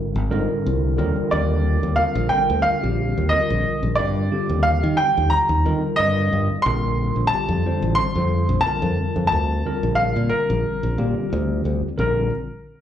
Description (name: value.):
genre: electric jazz fusion.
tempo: 90 BPM.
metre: 4/4.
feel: straight.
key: Bb major.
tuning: A4 = 440 Hz.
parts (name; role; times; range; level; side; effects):
tine electric piano; accompaniment; 0.0-12.3 s; D3 to C5; -24 LUFS; left 1 dB; medium stereo tremolo, slapback echo.
fingered electric bass; bass; 0.2-12.3 s; Ab1 to Eb3; -22 LUFS; equal; none.
clear baby grand piano; melody; 1.3-12.3 s; Bb4 to C6; -22 LUFS; equal; slapback echo, analog delay.
room: light reverb.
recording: live gig heard through the venue's PA, club reverb.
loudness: -18 LUFS.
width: side -10 dB against mid.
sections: 0.0-12.0 A section.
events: none.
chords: 0.0 Abmaj9; 1.0 Ebmaj9; 6.7 Bbmaj9; 12.0 Bbadd9.